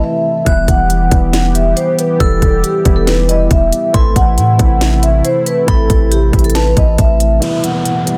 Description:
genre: hip hop, trap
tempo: 138 BPM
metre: 4/4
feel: half-time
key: E minor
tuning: A4 = 440 Hz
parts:
  - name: vibraphone with soft mallets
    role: melody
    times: 0.0-8.2 s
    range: G4 to F#5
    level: -18 LUFS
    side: equal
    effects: low-pass filter, tape echo
  - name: delicate synth tine bell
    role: second line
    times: 0.0-7.4 s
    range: A5 to F#6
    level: -29 LUFS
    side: equal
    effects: chorus, tape echo
  - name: tine electric piano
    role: accompaniment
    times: 0.0-8.2 s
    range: E3 to E4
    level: -22 LUFS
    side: equal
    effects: low-pass filter
  - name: warm analog pad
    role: sustained chords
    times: 0.0-8.2 s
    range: B2 to G4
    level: -25 LUFS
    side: equal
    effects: chorus, low-pass filter
  - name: warm 808-style bass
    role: bass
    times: 0.0-7.4 s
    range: E1 to A2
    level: -16 LUFS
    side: equal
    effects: none
  - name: trap drum kit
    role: drums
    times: 0.5-8.2 s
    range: hi-hat, kick drum, snare drum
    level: -16 LUFS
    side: equal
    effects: none
  - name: downlifter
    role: sound effects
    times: 7.4-8.2 s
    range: none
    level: -26 LUFS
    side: equal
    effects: none
room: digital ambience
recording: dense, heavily limited modern master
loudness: -12 LUFS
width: mono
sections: 0.0-7.4 A section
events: break 0.0-0.5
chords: 0.5 Em; 3.9 Am; 7.4 Em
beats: 0.03 | 0.46 0.90 1.33 1.77 | 2.20 2.64 3.07 3.51 | 3.94 4.38 4.81 5.25 | 5.68 6.12 6.55 6.99 | 7.42 7.86

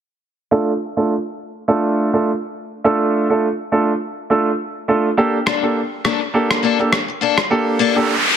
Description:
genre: dancehall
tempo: 103 BPM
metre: 4/4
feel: swing 56% on 16ths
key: D minor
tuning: A4 = 440 Hz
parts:
  - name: warm grand piano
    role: accompaniment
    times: 0.5-8.1 s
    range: A3 to A4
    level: -17 LUFS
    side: right 2 dB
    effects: low-pass filter
  - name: picked steel-string acoustic guitar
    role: arpeggios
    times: 5.5-8.0 s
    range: Bb3 to A4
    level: -20 LUFS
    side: left 11 dB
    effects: low-pass filter
  - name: electronic rim click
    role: drums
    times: 5.5-7.5 s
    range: none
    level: -21 LUFS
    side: left 1 dB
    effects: soft clipping on snare
  - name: noise sweep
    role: sound effects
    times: 7.9-8.4 s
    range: none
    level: -17 LUFS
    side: right 1 dB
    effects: none
room: light reverb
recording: dense, heavily limited modern master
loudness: -16 LUFS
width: side -8 dB against mid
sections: 0.5-8.4 A section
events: filter sweep 0.5-8.4; noise sweep 7.9-8.4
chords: 0.5 Dm; 5.2 Gmadd9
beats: | 0.52 1.10 1.68 2.26 | 2.85 3.43 4.01 4.59 | 5.18 5.76 6.34 6.92 | 7.51 8.09

